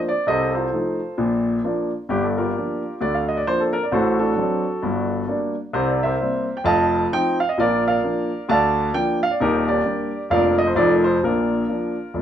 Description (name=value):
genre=jazz, stride piano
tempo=132 BPM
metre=4/4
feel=swing 60% on 8ths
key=Bb major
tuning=A4 = 440 Hz
part: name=warm grand piano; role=solo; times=0.0-12.2 s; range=Eb1 to A5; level=-18 LUFS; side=equal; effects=none
room=wet club reverb, RT60 0.8 s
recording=none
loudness=-18 LUFS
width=side -10 dB against mid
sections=0.0-12.2 A section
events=none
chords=0.3 F7/C; 1.2 Bb; 2.1 Gm7; 3.9 D7/A; 4.8 Gm; 5.8 C7; 6.7 F7; 7.6 Bb; 8.5 Bb/D; 9.4 Ebmaj7; 10.3 Bb/F; 10.8 F7; 11.2 Bb